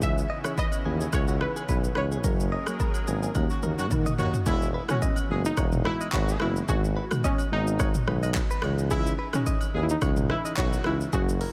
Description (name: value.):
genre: afrobeats.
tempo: 108 BPM.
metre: 4/4.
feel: swing 55% on 16ths.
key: unclear.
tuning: A4 = 440 Hz.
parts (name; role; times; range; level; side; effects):
glassy wavetable pluck; melody; 0.0-11.5 s; C#4 to E5; -35 LUFS; equal; chorus, delay.
soft electric-piano-like synth keys; accompaniment; 0.0-11.3 s; D#3 to G#4; -37 LUFS; equal; chorus.
warm analog pad; sustained chords; 0.0-4.5 s; C#3 to A#4; -41 LUFS; equal; chorus.
warm tuba; bass; 0.0-11.4 s; E1 to D#3; -31 LUFS; equal; none.
deep house drum kit; drums; 0.0-11.5 s; handclaps, hi-hat, kick drum, rim click, shaker, toms; -30 LUFS; equal; none.
direct-recorded clean electric guitar; riff; 0.3-11.5 s; F#4 to D#5; -39 LUFS; equal; delay.
agogo bells and woodblock; percussion; 0.4-11.0 s; none; -45 LUFS; equal; none.
mellow horn section; second line; 3.5-11.0 s; B2 to G#4; -38 LUFS; equal; none.
room: light reverb.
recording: none.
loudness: -26 LUFS.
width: mono.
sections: 0.0-4.5 A section; 4.5-11.5 B section.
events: band accent 2.2-4.5; drum fill 3.4-4.5.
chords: 0.0 C#madd9; 2.2 F#add9; 3.4 D#m7; 4.5 Eadd9; 6.7 G#m7; 8.6 C#madd9.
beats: | 0.02 0.57 1.13 1.69 | 2.24 2.80 3.35 3.91 | 4.46 5.02 5.58 6.13 | 6.69 7.24 7.80 8.35 | 8.91 9.46 10.02 10.57 | 11.13.